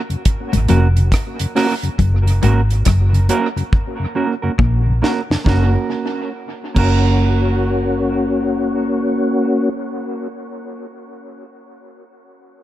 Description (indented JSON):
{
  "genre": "roots reggae",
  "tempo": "69 BPM",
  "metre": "4/4",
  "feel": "swing 64% on 16ths",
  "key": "F# major",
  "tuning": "A4 = 440 Hz",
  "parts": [
    { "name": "mellow tonewheel organ", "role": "accompaniment", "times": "0.1-9.7 s", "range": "F#2 to F#4", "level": "-21 LUFS", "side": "left 2 dB", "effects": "chorus vibrato, slow rotary speaker, dub echo" },
    { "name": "deep reggae drum kit", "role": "drums", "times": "0.1-7.0 s", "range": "crash cymbal, hi-hat, kick drum, rim click, snare drum", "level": "-20 LUFS", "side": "equal", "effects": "dub echo" },
    { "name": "clean electric guitar", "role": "riff", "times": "0.5-4.9 s", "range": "E#2 to A#2", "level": "-20 LUFS", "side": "left 5 dB", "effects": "none" },
    { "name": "vintage muted fingered electric bass", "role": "bass", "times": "0.5-10.4 s", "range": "E#1 to A#1", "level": "-15 LUFS", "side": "equal", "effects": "none" },
    { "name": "mellow electric guitar", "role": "accompaniment", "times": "0.7-10.4 s", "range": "A#3 to A#4", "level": "-22 LUFS", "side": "right 5 dB", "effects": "dub echo" }
  ],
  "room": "small room ambience",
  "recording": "echo-heavy mix",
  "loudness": "-14 LUFS",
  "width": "side -14 dB against mid",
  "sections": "0.0-5.5 A section; 5.5-8.9 B section",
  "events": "drum fill 3.7-5.5",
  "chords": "0.0 F#",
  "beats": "0.25 1.12 | 1.99 2.86 3.72 4.59 | 5.46 6.33 7.20 8.06"
}